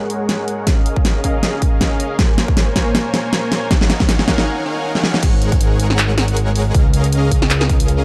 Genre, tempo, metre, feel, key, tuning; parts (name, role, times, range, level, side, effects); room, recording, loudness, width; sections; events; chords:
future bass; 158 BPM; 4/4; swing 55% on 16ths, half-time; Db major; A4 = 440 Hz
dense compressed supersaw; riff; 0.0-8.0 s; Ab3 to Ab5; -24 LUFS; equal; sidechain pumping, low-pass filter, digital delay
big-room dance drum kit; drums; 0.1-8.0 s; crash cymbal, handclaps, hi-hat, snare drum; -21 LUFS; equal
electronic kick drum; drums; 0.7-7.8 s; -18 LUFS; equal
fat analog bass; bass; 5.2-8.0 s; Ab1 to Db2; -19 LUFS; equal; sidechain pumping
digital ambience; dark, warm production; -16 LUFS; mono
0.0-5.2 A section; 5.2-8.0 B section
build-up 0.0-5.2; drum fill 0.0-4.5, 4.9; filter sweep on supersaw synth 0.0-5.2; break 4.5-5.2; drop 5.2-8.0
0.0 Ab9sus4; 0.7 Db69; 2.2 Bbm9; 3.7 Ebm11; 5.2 Ab9sus4; 6.7 Db69